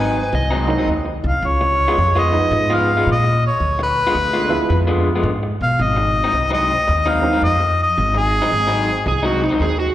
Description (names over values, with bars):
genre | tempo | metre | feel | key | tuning
electric blues shuffle | 110 BPM | 4/4 | swing 66% on 8ths | unclear | A4 = 440 Hz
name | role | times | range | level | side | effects
clear harmonica | melody | 0.0-9.2 s | Ab4 to Ab5 | -18 LUFS | left 1 dB | overdrive, slapback echo
overdriven slide guitar | second line | 0.0-0.9, 9.1-9.9 s | Eb4 to Eb5 | -22 LUFS | right 3 dB | slapback echo
electric guitar through a small old amp | riff | 0.0-9.8 s | Ab2 to F4 | -22 LUFS | left 2 dB | spring reverb, slapback echo
upright bass | bass | 0.0-9.9 s | Ab1 to B2 | -20 LUFS | equal | none
clear upright piano | accompaniment | 0.7-7.4 s | F3 to Fb4 | -23 LUFS | right 4 dB | slapback echo
room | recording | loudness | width
light reverb, studio ambience | live gig heard through the venue's PA, recital hall reverb | -15 LUFS | side -13 dB against mid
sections
0.0-9.9 A section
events
none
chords
0.0 Ab7; 1.4 Db7; 3.6 Ddim7; 5.8 Ab7